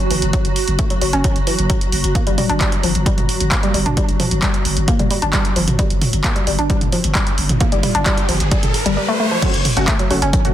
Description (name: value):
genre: driving peak-time techno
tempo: 132 BPM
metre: 4/4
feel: straight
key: F# minor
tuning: A4 = 441 Hz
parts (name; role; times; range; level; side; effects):
- swarming drone; drone; 0.0-9.0 s; F#3 to F#4; -26 LUFS; equal; built-in reverb, sidechain pumping
- woody wave-folded pluck; riff; 0.1-10.4 s; E3 to D4; -21 LUFS; left 1 dB; chorus, sidechain pumping, tape echo
- growling 808-style bass; bass; 0.1-10.5 s; F#1 to G1; -22 LUFS; equal; overdrive, sidechain pumping, low-pass filter
- punchy analog drum machine; drums; 0.1-10.5 s; crash cymbal, handclaps, hi-hat, toms; -21 LUFS; right 1 dB; none
- electronic kick drum; drums; 0.3-10.4 s; none; -19 LUFS; equal; none
- riser; sound effects; 6.9-9.4 s; none; -24 LUFS; equal; none
- rave stab; stabs; 9.4-10.5 s; A3 to F#4; -22 LUFS; left 1 dB; chorus, built-in reverb, sidechain pumping, digital delay
room: light reverb, digital ambience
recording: dense, heavily limited modern master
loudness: -14 LUFS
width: side -11 dB against mid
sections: 0.0-9.4 A section; 9.4-10.5 B section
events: riser 6.9-9.4; drop 9.4-10.5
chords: 0.0 N.C.; 9.4 F#m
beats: | 0.33 0.79 1.24 1.70 | 2.15 2.61 3.06 3.52 | 3.97 4.42 4.88 5.33 | 5.79 6.24 6.70 7.15 | 7.61 8.06 8.52 8.97 | 9.42 9.88 10.33